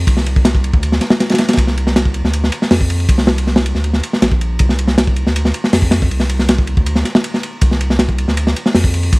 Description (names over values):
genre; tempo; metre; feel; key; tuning
drum and bass, jungle; 159 BPM; 4/4; straight; unclear; A4 = 440 Hz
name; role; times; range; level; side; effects
saturated sub bass; bass; 0.0-9.2 s; Bb1 to F2; -16 LUFS; equal; none
crunchy breakbeat drum kit; drums; 0.1-9.2 s; hi-hat, kick drum, ride cymbal, snare drum; -13 LUFS; equal; none
room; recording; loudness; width
little or no reverb; vinyl crackle; -12 LUFS; side -26 dB against mid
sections
0.0-4.6 A section; 4.6-9.2 A section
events
drop 0.0-4.6, 4.6-9.2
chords
none